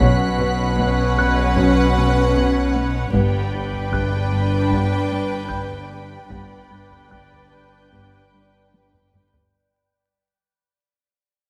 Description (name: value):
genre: cinematic, suspense film score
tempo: 76 BPM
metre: 4/4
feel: straight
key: unclear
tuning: A4 = 439 Hz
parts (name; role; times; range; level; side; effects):
- warm symphonic violin section; melody; 0.0-9.3 s; F#5 to G5; -33 LUFS; equal; none
- warm symphonic violin section; second line; 0.0-9.3 s; B4; -29 LUFS; equal; none
- dark symphonic viola section; accompaniment; 0.0-9.3 s; C#4 to D4; -27 LUFS; equal; none
- bubbling stepped-filter texture; sustained chords; 0.0-9.5 s; B4 to G5; -32 LUFS; equal; chorus, built-in reverb
- mellow French horn section; sustained chords; 0.0-8.2 s; F#3 to C#4; -29 LUFS; equal; none
- warm symphonic cello section; riff; 0.0-9.4 s; G2 to B3; -27 LUFS; equal; none
- rich symphonic cello section; bass; 0.0-9.3 s; G2 to B2; -28 LUFS; equal; none
- rich symphonic double bass section; bass; 0.0-9.3 s; G1 to B1; -26 LUFS; equal; none
- taiko ensemble; drums; 0.0-9.7 s; none; -29 LUFS; equal; none
- warm symphonic violin section; texture; 0.0-9.1 s; G5 to B6; -37 LUFS; equal; none
- dark baby grand piano; texture; 1.2-9.6 s; F#6 to G6; -31 LUFS; equal; none
room: light reverb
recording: close, detailed microphones, vinyl crackle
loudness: -19 LUFS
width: mono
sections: 0.0-9.5 A section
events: fade-out 0.0-9.5; drum fill 8.7-9.5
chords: 0.0 Bsus2; 3.1 G